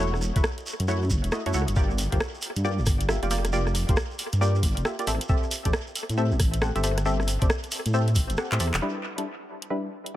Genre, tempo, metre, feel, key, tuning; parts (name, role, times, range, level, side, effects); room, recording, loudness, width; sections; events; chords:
UK garage, two-step garage; 136 BPM; 4/4; swing 63% on 16ths; A4 = 440 Hz
punchy chord stab; stabs; 0.0-9.9 s; G3 to F#5; -30 LUFS; left 1 dB; chorus, dub echo
dark detuned saw bass; bass; 0.0-8.8 s; E1 to A2; -25 LUFS; equal
garage drum kit; drums; 0.1-10.1 s; handclaps, hi-hat, rim click; -30 LUFS; equal; tape echo
shekere; percussion; 0.1-8.8 s; -38 LUFS; right 3 dB; tape echo
electronic kick drum; drums; 0.4-8.3 s; -25 LUFS; equal
digital ambience; echo-heavy mix; -23 LUFS; side -14 dB against mid
0.0-8.8 A section; 8.8-10.2 B section
drum fill 8.5-8.8; band accent 8.7
0.0 F#m7; 1.8 Gm7; 5.1 Am7; 8.8 Em7